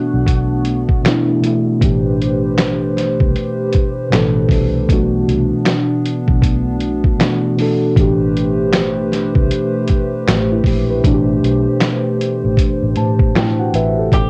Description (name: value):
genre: lo-fi hip hop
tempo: 78 BPM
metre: 4/4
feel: swing 63% on 16ths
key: A dorian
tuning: A4 = 440 Hz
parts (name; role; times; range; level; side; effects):
- electric guitar through a small old amp; melody; 0.0-1.0, 14.1-14.3 s; F#4 to G4; -28 LUFS; equal; tremolo, low-pass filter, cassette tape, tape echo, plate reverb
- muted felt-like synth keys; accompaniment; 0.0-14.3 s; B2 to A5; -19 LUFS; equal; chorus, low-pass filter, cassette tape
- hollow soft pad; sustained chords; 0.0-14.3 s; A3 to C5; -25 LUFS; equal; chorus, low-pass filter, cassette tape, plate reverb
- vintage muted fingered electric bass; bass; 0.1-14.3 s; A1 to A2; -22 LUFS; equal; none
- lo-fi sampler-style drum kit; drums; 0.3-14.3 s; handclaps, hi-hat, kick drum, snare drum; -18 LUFS; equal; none
room: light reverb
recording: home recording on cassette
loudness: -16 LUFS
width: mono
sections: 0.0-14.1 A section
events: none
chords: 0.0 Bm7; 1.8 Am9; 4.9 Bm7; 8.0 Am9; 11.0 Am11